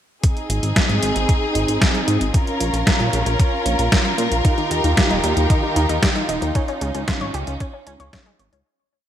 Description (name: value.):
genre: italo disco.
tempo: 114 BPM.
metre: 4/4.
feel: straight.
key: Ab major.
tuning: A4 = 440 Hz.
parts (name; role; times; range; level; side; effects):
warm studio string section; sustained chords; 0.2-8.6 s; Eb3 to Bb4; -22 LUFS; right 1 dB; none.
detuned 8-bit digital drum machine; drums; 0.2-8.6 s; hi-hat, snare drum; -22 LUFS; equal; overdrive, gated reverb.
electronic kick drum; drums; 0.2-8.2 s; none; -19 LUFS; equal; overdrive.
chorused synth bass; bass; 0.5-8.6 s; Eb1 to Bb2; -22 LUFS; equal; none.
analog pluck; arpeggios; 4.4-8.6 s; Eb3 to Db5; -26 LUFS; left 2 dB; chorus, ping-pong delay.
room: moderate plate reverb, RT60 1.8 s, digital ambience.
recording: bright 1980s-style digital production.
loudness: -16 LUFS.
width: side -10 dB against mid.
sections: 0.2-8.7 verse.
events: fade-out 5.8-8.7.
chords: 0.2 Ab; 2.3 Bbm; 4.4 Ebadd9; 6.6 Dbadd9.